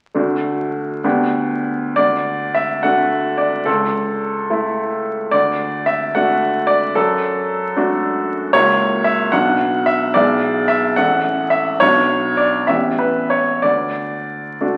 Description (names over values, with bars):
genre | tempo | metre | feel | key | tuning
classical, romantic character piece for solo piano | 61-77 BPM (dotted quarters) | 6/8 | rubato | D major | A4 = 440 Hz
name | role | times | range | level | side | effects
clear baby grand piano | solo | 0.1-14.8 s | A1 to F#5 | -18 LUFS | equal | none
room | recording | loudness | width
wet recital hall reverb, RT60 1.5 s | very old 78 rpm record, vinyl crackle | -17 LUFS | mono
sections
0.1-2.0 A section; 2.0-14.8 B section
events
none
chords
0.1 D; 1.0 G/D; 2.0 D; 3.7 A/C#; 5.3 D; 7.0 D/F#; 8.5 F#7/C#; 9.3 Bm; 10.2 E7/B; 11.0 A; 11.8 Bm; 12.7 A9; 13.6 D